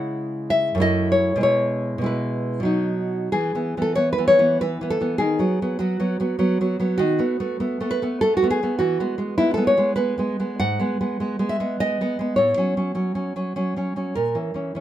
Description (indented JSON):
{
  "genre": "romantic piece for solo classical guitar",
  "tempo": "89-105 BPM",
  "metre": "3/4",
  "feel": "rubato",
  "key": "E major",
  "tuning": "A4 = 441 Hz",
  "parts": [
    { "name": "nylon-string guitar", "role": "solo", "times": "0.0-14.8 s", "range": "F#2 to F#5", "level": "-20 LUFS", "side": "equal", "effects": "none" }
  ],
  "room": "moderate small room reverb, RT60 0.6 s",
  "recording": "minimal, uncompressed stereo recording",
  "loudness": "-20 LUFS",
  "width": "side -12 dB against mid",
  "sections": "0.0-3.3 A section; 3.3-14.8 B section",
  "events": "none",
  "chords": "0.0 C#m; 0.8 F#m7; 1.4 E/B; 2.7 B; 3.3 E5; 5.2 B5; 7.0 B7(no3); 8.8 E; 10.6 G#m7; 12.4 F#5; 14.1 A#dim"
}